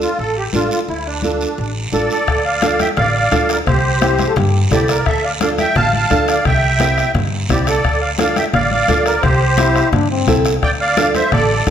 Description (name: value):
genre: latin, cumbia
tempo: 172 BPM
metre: 4/4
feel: straight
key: D minor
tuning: A4 = 440 Hz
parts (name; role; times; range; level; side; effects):
- musette accordion; melody; 0.0-11.7 s; D4 to A5; -17 LUFS; right 1 dB; none
- nylon-string guitar; accompaniment; 0.0-11.7 s; C4 to A4; -21 LUFS; right 3 dB; none
- upright bass; bass; 0.0-11.7 s; A1 to G2; -20 LUFS; equal; none
- guiro; percussion; 0.0-11.7 s; none; -28 LUFS; right 4 dB; none
- congas; percussion; 0.2-11.7 s; none; -23 LUFS; left 2 dB; none
- bombo; percussion; 2.3-11.7 s; none; -22 LUFS; left 4 dB; none
- clear trombone; second line; 4.0-4.6, 9.6-10.5 s; C4 to A4; -20 LUFS; left 6 dB; none
room: moderate large studio reverb, RT60 1.2 s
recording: none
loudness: -13 LUFS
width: side -9 dB against mid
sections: 0.0-2.3 A section; 2.3-11.7 B section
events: none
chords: 0.0 Dm; 3.7 C; 5.1 Dm; 6.5 C; 7.8 Dm; 9.2 C; 10.6 Dm